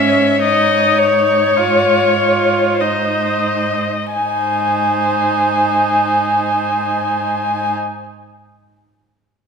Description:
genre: classical, slow romantic movement for string quartet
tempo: 42-58 BPM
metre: 3/4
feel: rubato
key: Ab major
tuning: A4 = 442 Hz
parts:
  - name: muted violin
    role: melody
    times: 0.0-7.7 s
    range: Db5 to Ab5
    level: -16 LUFS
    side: left 3 dB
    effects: none
  - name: muted violin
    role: second line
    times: 0.0-7.7 s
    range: C5 to Db5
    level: -22 LUFS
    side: left 2 dB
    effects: none
  - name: muted viola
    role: accompaniment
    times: 0.0-7.7 s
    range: Db4 to F4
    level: -19 LUFS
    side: right 5 dB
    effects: none
  - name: muted cello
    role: bass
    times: 0.0-7.7 s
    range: Ab2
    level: -24 LUFS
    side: right 6 dB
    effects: none
room: wet recital hall reverb, RT60 1.5 s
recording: minimal, uncompressed stereo recording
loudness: -13 LUFS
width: side -6 dB against mid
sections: 0.0-4.2 A section; 4.2-8.2 B section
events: slowing down 0.0-4.2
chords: 0.4 Abadd11; 4.2 Ab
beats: | 0.44 1.56 2.80 | 4.17 5.52 6.85

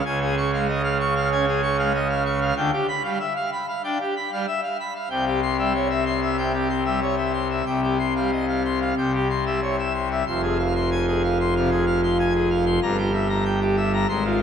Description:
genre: classical, organ toccata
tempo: 94 BPM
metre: 4/4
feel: straight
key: F minor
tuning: A4 = 440 Hz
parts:
  - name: pipe organ, full organ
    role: solo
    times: 0.0-14.4 s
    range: F1 to Db6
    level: -20 LUFS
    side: equal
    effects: none
room: wet church reverb, RT60 3.1 s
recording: none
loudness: -20 LUFS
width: side -8 dB against mid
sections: 0.0-10.3 A section; 10.3-14.4 B section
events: none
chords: 0.1 Db; 2.6 G7/D; 5.1 C; 7.7 Csus4; 9.0 C; 10.3 Fm; 12.8 Edim/G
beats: | 0.05 0.68 1.31 1.94 | 2.56 3.19 3.83 4.47 | 5.10 5.74 6.38 7.01 | 7.66 8.32 8.97 9.61 | 10.26 10.91 11.55 12.19 | 12.82 13.46 14.10

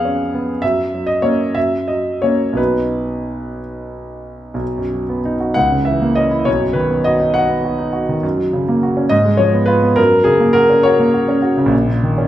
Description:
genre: classical, romantic character piece for solo piano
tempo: 56-71 BPM (dotted quarters)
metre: 6/8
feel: rubato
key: B major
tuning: A4 = 440 Hz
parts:
  - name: warm concert grand piano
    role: solo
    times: 0.0-12.3 s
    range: A#1 to G#5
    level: -14 LUFS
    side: equal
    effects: none
room: wet recital hall reverb, RT60 1.4 s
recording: minimal, uncompressed stereo recording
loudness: -13 LUFS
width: side -12 dB against mid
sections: 0.0-4.6 A section; 4.6-12.3 B section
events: none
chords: 0.0 C#7/E#; 0.6 F#; 2.6 B; 5.6 A#dim/C#; 6.5 B; 8.2 F#; 9.1 Fdim/Ab; 10.0 F#; 11.7 D#7(no3)/A#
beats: | 0.62 1.56 | 2.58 3.59 | 4.61 5.56 | 6.47 7.35 | 8.23 9.11 | 9.98 10.85 | 11.73

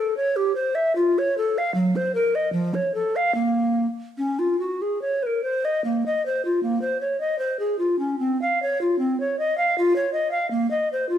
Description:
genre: classical, baroque-style fantasia for unaccompanied recorder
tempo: 70-81 BPM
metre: 3/4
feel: rubato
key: Bb minor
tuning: A4 = 440 Hz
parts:
  - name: mellow hollow bass recorder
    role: solo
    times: 0.0-11.2 s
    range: F3 to F5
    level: -21 LUFS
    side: equal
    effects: none
room: wet stone room reverb, RT60 1.1 s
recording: heard from further back in the room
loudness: -21 LUFS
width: side -10 dB against mid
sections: 0.0-5.8 A section; 5.8-11.2 B section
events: none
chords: none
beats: 0.17 | 0.97 1.76 2.54 | 3.36 4.20 5.03 | 5.85 6.63 7.39 | 8.20 9.00 9.76 | 10.51

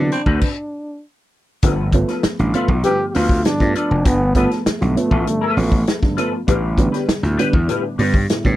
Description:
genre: funk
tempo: 99 BPM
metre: 4/4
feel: straight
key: unclear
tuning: A4 = 442 Hz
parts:
  - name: warm trombone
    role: melody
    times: 0.0-6.1 s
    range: A3 to G4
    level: -21 LUFS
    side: equal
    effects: none
  - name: dark upright piano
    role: stabs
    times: 0.0-8.6 s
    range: G2 to B3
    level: -22 LUFS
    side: right 3 dB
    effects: none
  - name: gritty slap bass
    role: bass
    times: 0.0-8.6 s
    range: F1 to A2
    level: -19 LUFS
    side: equal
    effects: overdrive
  - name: warm soul drum kit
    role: drums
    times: 0.1-8.6 s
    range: crash cymbal, hi-hat, kick drum, snare drum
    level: -19 LUFS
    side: equal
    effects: none
  - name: semi-hollow electric guitar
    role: accompaniment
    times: 0.3-8.5 s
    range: C4 to B4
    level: -24 LUFS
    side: left 6 dB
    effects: wah, ensemble chorus
  - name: percussive tonewheel organ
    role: sustained chords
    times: 1.6-8.6 s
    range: D3 to B3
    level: -29 LUFS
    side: equal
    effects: none
room: little or no reverb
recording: none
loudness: -15 LUFS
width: side -15 dB against mid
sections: 0.0-1.6 A section; 1.6-8.6 B section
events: stop 0.4-1.6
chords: 0.0 D13; 1.6 G9; 6.5 A9sus4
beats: 0.42 1.03 | 1.63 2.24 2.84 3.45 | 4.06 4.66 5.27 5.87 | 6.48 7.09 7.69 8.30

